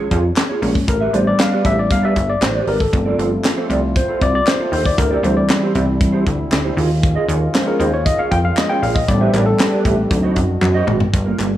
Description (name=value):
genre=early-eighties boogie funk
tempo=117 BPM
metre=4/4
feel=straight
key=unclear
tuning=A4 = 441 Hz
part: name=tine electric piano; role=accompaniment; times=0.0-10.5 s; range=E3 to G5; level=-18 LUFS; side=left 1 dB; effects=overdrive
part: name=mellow electric guitar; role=riff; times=0.0-11.6 s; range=Bb3 to E5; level=-23 LUFS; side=right 5 dB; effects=ensemble chorus
part: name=plucky analog bass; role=bass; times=0.1-11.6 s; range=G1 to F#2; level=-19 LUFS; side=equal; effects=none
part: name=tight funk drum kit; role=drums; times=0.1-11.5 s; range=handclaps, hi-hat, kick drum, snare drum, toms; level=-19 LUFS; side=equal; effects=none
part: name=group handclap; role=percussion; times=0.4-11.5 s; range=none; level=-30 LUFS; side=left 3 dB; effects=none
part: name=mellow French horn section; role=sustained chords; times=2.9-11.1 s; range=C3 to G4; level=-27 LUFS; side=left 1 dB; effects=none
room=light reverb, studio ambience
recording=small room ambience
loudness=-14 LUFS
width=side -13 dB against mid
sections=0.0-11.1 A section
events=tine electric piano solo 0.0-11.1; drum fill 10.6-11.1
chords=0.0 Eb9sus4 (rootless); 0.9 A9sus4; 2.9 G9sus4; 5.0 D9sus4; 6.8 Eb9sus4; 9.1 A9sus4; 10.1 D7b9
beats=0.37 | 0.88 1.40 1.91 2.42 | 2.93 3.45 3.96 4.47 | 4.99 5.50 6.01 6.52 | 7.04 7.55 8.06 8.57 | 9.09 9.60 10.11 10.63 | 11.14